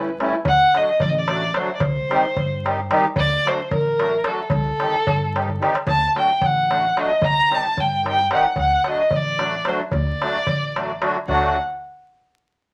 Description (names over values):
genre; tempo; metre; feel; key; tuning
balkan folk, Balkan wedding band; 222 BPM (eighths); 5/8; straight; D phrygian dominant; A4 = 440 Hz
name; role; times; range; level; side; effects
dark violin; melody; 0.0-11.6 s; A4 to Bb5; -22 LUFS; equal; none
musette accordion; accompaniment; 0.0-11.6 s; D3 to G4; -25 LUFS; equal; none
upright bass; bass; 0.0-11.6 s; A1 to G2; -31 LUFS; equal; none
darbuka; percussion; 0.1-11.6 s; none; -27 LUFS; equal; none
room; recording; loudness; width
moderate studio reverb, RT60 0.5 s; vinyl crackle; -20 LUFS; mono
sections
0.5-11.3 A section; 11.3-12.6 B section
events
drum fill 5.5-5.9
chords
0.5 D; 1.8 Cm; 3.2 D; 4.5 Cm; 5.9 D; 7.2 Cm; 8.6 D